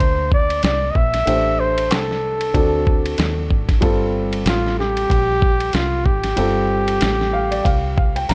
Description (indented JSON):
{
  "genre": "hip hop, jazz-hop",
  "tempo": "94 BPM",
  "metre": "4/4",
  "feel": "swing 59% on 16ths",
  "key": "G minor",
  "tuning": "A4 = 440 Hz",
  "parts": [
    { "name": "mellow flugelhorn", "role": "melody", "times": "0.0-8.3 s", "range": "F4 to E5", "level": "-22 LUFS", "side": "equal", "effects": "none" },
    { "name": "dark upright piano", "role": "accompaniment", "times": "0.0-8.3 s", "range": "G3 to Bb5", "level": "-26 LUFS", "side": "equal", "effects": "none" },
    { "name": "deep dub fingered electric bass", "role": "bass", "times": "0.0-8.3 s", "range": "G1 to Eb2", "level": "-26 LUFS", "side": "equal", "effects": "none" },
    { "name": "lo-fi sampler-style drum kit", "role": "drums", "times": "0.0-8.3 s", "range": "hi-hat, kick drum, ride cymbal, snare drum", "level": "-23 LUFS", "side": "equal", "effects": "none" }
  ],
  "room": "light reverb",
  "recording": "dark, warm production",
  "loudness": "-18 LUFS",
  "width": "mono",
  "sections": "0.0-8.3 A section",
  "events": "upright piano fill 7.0-8.3",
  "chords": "0.0 Bb; 1.3 Am7; 2.5 D7; 3.8 Gm7"
}